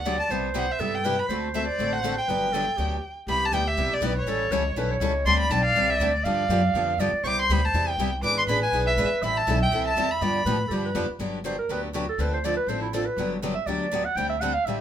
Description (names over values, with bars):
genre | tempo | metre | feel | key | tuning
acoustic string swing (jazz manouche) | 242 BPM | 4/4 | swing 56% on 8ths | G major, C major from 3.3 s, G major from 11.2 s | A4 = 440 Hz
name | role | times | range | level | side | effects
dark violin | melody | 0.0-11.0 s | Db5 to D6 | -26 LUFS | equal | none
upright bass | bass | 0.0-14.8 s | G1 to A2 | -29 LUFS | equal | none
breathy clarinet | second line | 0.1-14.8 s | D4 to G5 | -28 LUFS | right 2 dB | none
picked steel-string acoustic guitar | accompaniment | 0.1-14.8 s | C3 to A4 | -31 LUFS | left 7 dB | none
picked steel-string acoustic guitar | accompaniment | 0.1-14.8 s | C3 to B4 | -34 LUFS | right 4 dB | none
room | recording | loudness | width
moderate studio reverb, RT60 0.6 s | minimal, uncompressed stereo recording | -22 LUFS | side -10 dB against mid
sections
0.0-3.3 A section; 3.3-11.2 B section; 11.2-14.8 C section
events
stop 3.0; clarinet solo 11.2-14.8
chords
0.3 Cmaj7; 1.3 D7; 2.3 Gmaj7; 3.3 Cmaj7; 4.3 A7; 5.3 D7sus4; 6.2 G7; 7.2 Cmaj7; 8.2 E7; 9.2 Am7; 10.2 G7; 11.2 Gmaj7; 12.2 Dm7; 13.2 Gmaj7; 14.2 D7sus4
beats
0.05 | 0.30 0.54 0.79 1.04 | 1.29 1.54 1.79 2.04 | 2.28 2.53 2.78 3.03 | 3.28 3.52 3.77 4.02 | 4.27 4.51 4.76 5.01 | 5.26 5.51 5.75 6.00 | 6.25 6.50 6.74 6.99 | 7.24 7.49 7.73 7.98 | 8.23 8.47 8.72 8.97 | 9.22 9.46 9.71 9.96 | 10.21 10.45 10.70 10.95 | 11.20 11.44 11.69 11.94 | 12.19 12.43 12.68 12.93 | 13.18 13.42 13.67 13.92 | 14.17 14.41 14.66